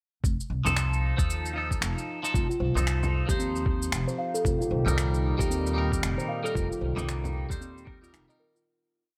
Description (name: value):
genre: organic downtempo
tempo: 114 BPM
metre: 4/4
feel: swing 59% on 16ths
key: F mixolydian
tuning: A4 = 438 Hz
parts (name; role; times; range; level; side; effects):
- upright bass; bass; 0.2-8.2 s; F1 to Eb2; -31 LUFS; equal; sidechain pumping
- electronic kick drum; drums; 0.2-8.0 s; none; -31 LUFS; equal; overdrive
- electronic shaker and finger snaps; drums; 0.2-8.6 s; none; -36 LUFS; equal; none
- twangy electric guitar; accompaniment; 0.6-8.7 s; F3 to C5; -36 LUFS; equal; phaser, sidechain pumping, delay
- frame drum; percussion; 0.7-7.3 s; none; -38 LUFS; equal; none
- steel tongue drum; arpeggios; 2.3-8.6 s; C4 to F5; -34 LUFS; equal; delay
- warm analog pad; sustained chords; 4.4-8.6 s; Bb2 to G4; -38 LUFS; equal; chorus, tremolo, sidechain pumping
room: light reverb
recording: none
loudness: -28 LUFS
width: mono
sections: 0.2-8.7 groove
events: fade-out 5.9-8.7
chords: 0.2 F7; 4.4 Eb/F